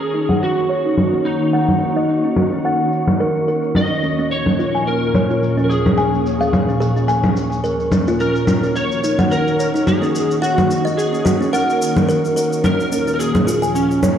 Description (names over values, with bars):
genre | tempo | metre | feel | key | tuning
organic downtempo | 108 BPM | 4/4 | swing 56% on 16ths | Eb minor | A4 = 440 Hz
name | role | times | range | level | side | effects
electric slide guitar | melody | 0.0-14.2 s | Db4 to Eb5 | -21 LUFS | equal | ensemble chorus, tape echo
ethereal airy pad | sustained chords | 0.0-14.2 s | Eb2 to Gb4 | -21 LUFS | equal | ensemble chorus, built-in reverb
kalimba | arpeggios | 0.0-14.1 s | Db4 to Ab5 | -21 LUFS | equal | low-pass filter, tape echo
shaker and congas | drums | 0.0-14.2 s | none | -20 LUFS | equal | overdrive, low-pass filter on perc, low-pass filter on hats, low-pass filter on snare, low-pass filter on room
wind-like tuned noise texture | texture | 0.0-14.2 s | Db4 to Db5 | -30 LUFS | right 2 dB | built-in reverb
room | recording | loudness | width
wet plate reverb, RT60 3.3 s | dreamy mix soaked in reverb | -15 LUFS | side -9 dB against mid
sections
0.0-14.2 A section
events
filter sweep on drum 0.0-14.2; filter sweep on kalimba 0.0-14.2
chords
0.0 Ebm7; 3.8 Bbm7/Eb; 8.2 Ebm7; 12.6 Bbm7/Eb